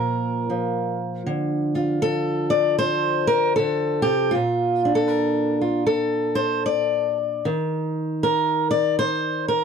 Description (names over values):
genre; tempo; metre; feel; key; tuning
folk, solo fingerstyle acoustic guitar; 78 BPM; 4/4; swing 62% on 8ths; unclear; A4 = 445 Hz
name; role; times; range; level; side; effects
fingerpicked steel-string acoustic guitar; solo; 0.0-9.6 s; Bb2 to D5; -20 LUFS; equal; none
room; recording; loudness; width
little or no reverb; dry, close 1970s-style studio recording; -20 LUFS; side -6 dB against mid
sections
0.0-1.3 A section; 1.3-9.6 B section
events
none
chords
0.0 Bb5; 1.3 Dm; 4.4 Bbmaj7; 7.4 Eb5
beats
0.48 | 1.26 2.03 2.81 3.58 | 4.35 5.12 5.90 6.67 | 7.44 8.22 8.99